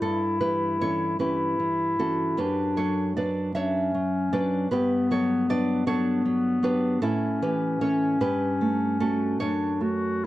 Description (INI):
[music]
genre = romantic duo for clarinet and classical guitar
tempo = 51 BPM (dotted quarters)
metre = 6/8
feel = rubato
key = D major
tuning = A4 = 443 Hz
[part]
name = warm clarinet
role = melody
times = 0.0-10.3 s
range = B3 to F#4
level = -25 LUFS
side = left 2 dB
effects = plate reverb
[part]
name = nylon-string guitar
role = accompaniment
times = 0.0-10.3 s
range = F#2 to E5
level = -26 LUFS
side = right 2 dB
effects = plate reverb
[sound]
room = wet studio reverb, RT60 0.5 s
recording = dark, warm production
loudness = -23 LUFS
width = side -15 dB against mid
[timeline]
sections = 0.0-10.3 A section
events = none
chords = 0.0 A7/G; 2.4 D/F#; 4.7 Gmaj7; 7.0 A; 8.2 A7/G; 9.4 D/F#